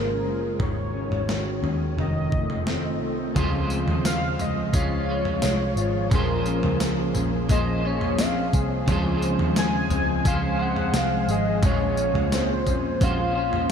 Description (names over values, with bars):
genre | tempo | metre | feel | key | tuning
dream pop | 87 BPM | 4/4 | straight | Bb minor | A4 = 441 Hz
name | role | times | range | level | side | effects
warm velvety synth lead | melody | 0.0-13.7 s | Bb4 to Ab5 | -28 LUFS | equal | chorus, diffuse ambient delay
warbly tape-like pad | sustained chords | 0.0-13.7 s | Db3 to A4 | -29 LUFS | right 1 dB | chorus, built-in reverb
mellow electric guitar | arpeggios | 0.0-13.7 s | Eb3 to Ab4 | -30 LUFS | left 4 dB | ensemble chorus, diffuse ambient delay
vintage muted picked electric bass | bass | 0.0-13.7 s | F1 to Eb2 | -28 LUFS | equal | none
gated 80s digital drum machine | drums | 0.6-13.7 s | kick drum, snare drum, tambourine, toms | -27 LUFS | equal | gated reverb, gated reverb snare, overdrive
electric guitar at the edge of break-up | accompaniment | 3.3-13.7 s | Bb2 to C5 | -30 LUFS | right 3 dB | harmonic tremolo, analog chorus
room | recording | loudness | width
moderate huge ambient reverb, RT60 8.5 s | dreamy mix soaked in reverb | -21 LUFS | side -7 dB against mid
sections
0.0-3.4 A section; 3.4-13.7 B section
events
none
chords
0.0 Bbm7; 0.6 Ab7sus4; 2.0 F7; 3.4 Dbmaj7; 6.1 Bbm9; 8.9 Dbmaj7; 11.6 Bbm9